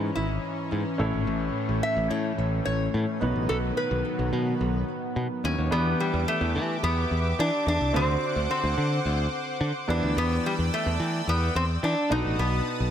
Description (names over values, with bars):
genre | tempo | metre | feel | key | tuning
pop | 108 BPM | 4/4 | straight | E minor from 5.7 s | A4 = 438 Hz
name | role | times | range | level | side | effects
metal-body resonator slide guitar | melody | 0.0-12.9 s | G3 to E5 | -29 LUFS | equal | digital delay
clear baby grand piano | accompaniment | 0.0-12.9 s | G#2 to D#5 | -31 LUFS | equal | none
lush unison pad | sustained chords | 0.0-12.9 s | D#3 to E6 | -32 LUFS | left 1 dB | chorus
modern bright picked electric bass | bass | 0.0-12.9 s | G#1 to E3 | -27 LUFS | equal | none
room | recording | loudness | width
moderate concert hall reverb, RT60 1.8 s, small room ambience | none | -24 LUFS | side -9 dB against mid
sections
0.0-5.7 A section; 5.7-12.9 B section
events
none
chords
0.0 C#madd9; 1.0 A; 3.2 B; 5.7 Em7; 7.9 D7; 9.9 Em7; 12.1 B7